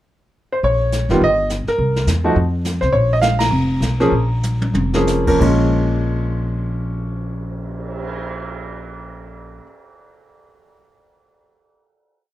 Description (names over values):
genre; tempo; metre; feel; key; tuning
jazz piano trio; 176-209 BPM; 4/4; swing 60% on 8ths; Bb minor; A4 = 440 Hz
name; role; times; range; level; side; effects
clear concert grand piano; melody; 0.5-9.6 s; Bb2 to Bb5; -18 LUFS; right 1 dB; none
upright bass; bass; 0.6-9.6 s; F1 to F2; -20 LUFS; equal; none
jazz brush drum kit; drums; 0.6-8.0 s; brushed snare drum, crash cymbal, cymbal swell, hi-hat, kick drum, ride cymbal, snare drum, toms; -26 LUFS; left 1 dB; none
room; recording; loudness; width
light reverb; dark, warm production; -16 LUFS; side -14 dB against mid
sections
0.0-0.6 pickup bar; 0.6-5.4 A section; 5.4-8.1 final chord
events
slowing down 2.9-5.4; band accent 3.4; drum fill 4.4-5.1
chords
0.0 N.C.; 0.6 Bbm; 1.2 N.C.; 1.8 C7(no3); 2.4 F5; 2.9 Bbm; 5.4 Bbm7